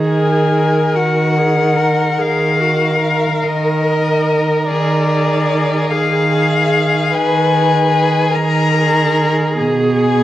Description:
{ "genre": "classical, slow romantic movement for string quartet", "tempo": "48 BPM (dotted quarters)", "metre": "12/8", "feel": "rubato", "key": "Eb minor", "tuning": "A4 = 440 Hz", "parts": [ { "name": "clear viola", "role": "accompaniment", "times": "0.0-10.2 s", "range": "Gb4 to Cb5", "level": "-19 LUFS", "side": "right 1 dB", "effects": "none" }, { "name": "rich cello", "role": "bass", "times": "0.0-10.2 s", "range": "B2 to Eb3", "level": "-16 LUFS", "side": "right 2 dB", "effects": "none" }, { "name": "rich violin", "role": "melody", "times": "0.1-10.2 s", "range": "D5 to Bb5", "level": "-18 LUFS", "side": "left 6 dB", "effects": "none" }, { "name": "rich violin", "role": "second line", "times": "0.1-10.2 s", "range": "Ab4 to Bb4", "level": "-20 LUFS", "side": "left 1 dB", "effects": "none" } ], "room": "wet recital hall reverb, RT60 1.7 s", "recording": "worn, warbling old tape, cassette tape, warbly pitch drift", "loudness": "-12 LUFS", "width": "side -13 dB against mid", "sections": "0.0-10.2 A section", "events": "none", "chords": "0.0 Ebm; 4.7 Bb7b9/Eb; 9.6 B5" }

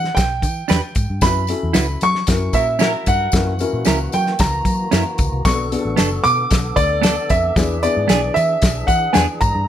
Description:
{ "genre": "uptempo 1960s-style soul", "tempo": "114 BPM", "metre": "4/4", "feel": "straight", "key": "unclear", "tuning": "A4 = 439 Hz", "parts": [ { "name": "warm grand piano", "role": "melody", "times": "0.0-9.7 s", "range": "D5 to D6", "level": "-20 LUFS", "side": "right 1 dB", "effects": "none" }, { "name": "dark upright piano", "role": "accompaniment", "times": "0.0-8.5 s", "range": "B3 to B4", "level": "-25 LUFS", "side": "left 5 dB", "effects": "none" }, { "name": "vintage muted fingered electric bass", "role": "bass", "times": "0.0-9.6 s", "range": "F#1 to F#3", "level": "-22 LUFS", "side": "equal", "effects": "none" }, { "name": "warm soul drum kit", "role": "drums", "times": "0.0-9.5 s", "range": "hi-hat, kick drum, snare drum", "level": "-19 LUFS", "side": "equal", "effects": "none" }, { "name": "tambourine", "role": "percussion", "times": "0.2-9.5 s", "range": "none", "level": "-32 LUFS", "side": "left 7 dB", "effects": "none" }, { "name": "clean electric guitar", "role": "stabs", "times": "0.7-9.3 s", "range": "B3 to B4", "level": "-21 LUFS", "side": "right 8 dB", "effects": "none" }, { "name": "warm horn section", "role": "second line", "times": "2.5-3.3 s", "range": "F#3 to A#4", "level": "-26 LUFS", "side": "left 2 dB", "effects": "none" }, { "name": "tonewheel organ", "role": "sustained chords", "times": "3.3-9.7 s", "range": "D3 to A4", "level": "-30 LUFS", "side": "equal", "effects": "overdrive, fast rotary speaker" } ], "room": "moderate studio reverb, RT60 0.7 s", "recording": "none", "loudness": "-15 LUFS", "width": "side -10 dB against mid", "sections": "0.0-9.7 A section", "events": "band accent 1.2-3.3", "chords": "0.0 Em; 1.2 F#7sus4; 2.3 F#7; 5.5 Bm7; 7.6 E7" }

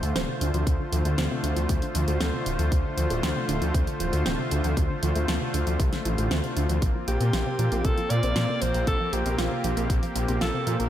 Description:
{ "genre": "synthwave", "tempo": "117 BPM", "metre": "4/4", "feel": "straight", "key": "D minor", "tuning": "A4 = 440 Hz", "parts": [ { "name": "soft supersaw", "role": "sustained chords", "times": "0.0-10.9 s", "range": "D3 to C5", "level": "-30 LUFS", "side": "equal", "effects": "sidechain pumping" }, { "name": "analog pluck", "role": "arpeggios", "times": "0.0-10.9 s", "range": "C3 to F4", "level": "-32 LUFS", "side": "right 2 dB", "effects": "chorus, ping-pong delay" }, { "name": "wide detuned saw bass", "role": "bass", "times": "0.0-10.9 s", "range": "D1 to Bb2", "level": "-26 LUFS", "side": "equal", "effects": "chorus, sidechain pumping" }, { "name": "pop drum kit", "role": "drums", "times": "0.0-10.9 s", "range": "hi-hat, snare drum", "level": "-32 LUFS", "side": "left 1 dB", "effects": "none" }, { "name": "electronic kick drum", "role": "drums", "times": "0.7-10.0 s", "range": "none", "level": "-26 LUFS", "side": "equal", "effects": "none" }, { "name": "warm alto saxophone", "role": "melody", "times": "7.1-10.9 s", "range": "F4 to D5", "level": "-29 LUFS", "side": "equal", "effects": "tape echo" } ], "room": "light reverb, digital ambience", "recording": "none", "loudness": "-23 LUFS", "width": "side -11 dB against mid", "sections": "0.0-10.9 A section", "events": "none", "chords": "0.0 Dm7; 6.8 Bbsus2" }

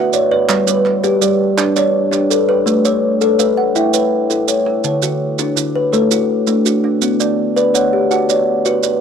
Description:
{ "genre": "southern african traditional, mbira-style interlocking cycle", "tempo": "110 BPM (dotted quarters)", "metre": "12/8", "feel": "straight", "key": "A mixolydian", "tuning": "A4 = 440 Hz", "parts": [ { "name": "kalimba", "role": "arpeggios", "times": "0.0-9.0 s", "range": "D3 to F#5", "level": "-14 LUFS", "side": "left 4 dB", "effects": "none" }, { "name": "kalimba", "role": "arpeggios", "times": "0.0-9.0 s", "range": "D3 to A5", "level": "-18 LUFS", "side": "right 8 dB", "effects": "none" }, { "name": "maracas", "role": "percussion", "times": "0.1-9.0 s", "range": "none", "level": "-21 LUFS", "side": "right 18 dB", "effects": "none" }, { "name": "group handclap", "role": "percussion", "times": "0.5-2.2 s", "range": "none", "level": "-22 LUFS", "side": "right 6 dB", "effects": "none" } ], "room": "small room ambience", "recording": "dry, close 1970s-style studio recording", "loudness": "-13 LUFS", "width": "side -7 dB against mid", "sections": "0.0-2.7 A section; 2.7-9.0 A section", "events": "none", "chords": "0.5 G; 2.7 A; 4.8 D; 7.0 Bm" }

